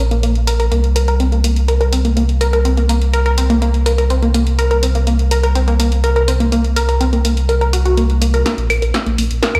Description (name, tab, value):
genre	melodic techno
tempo	124 BPM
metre	4/4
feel	straight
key	unclear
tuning	A4 = 439 Hz
part	tight sequenced synth	arpeggios	0.0-9.6 s	Bb3 to Bb4	-20 LUFS	equal	chorus, dub echo
part	dark detuned saw bass	bass	0.0-9.6 s	Bb1 to Eb2	-17 LUFS	equal	none
part	punchy analog drum machine	drums	0.1-9.6 s	claves, hi-hat, snare drum	-25 LUFS	equal	high-pass filter on hats, high-pass filter on snare, high-pass filter on perc, high-pass filter on room
room	light reverb, digital ambience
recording	played on a big sound system in a bare room, stone room reverb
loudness	-15 LUFS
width	mono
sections	0.0-8.5 A section; 8.5-9.6 B section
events	build-up 8.5-9.6; drum fill 8.5-9.6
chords	0.0 N.C.; 0.7 Bbsus2/C; 8.5 N.C.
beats	0.23 | 0.72 1.20 1.68 2.17 | 2.65 3.13 3.62 4.10 | 4.59 5.07 5.55 6.04 | 6.52 7.01 7.49 7.97 | 8.46 8.94 9.43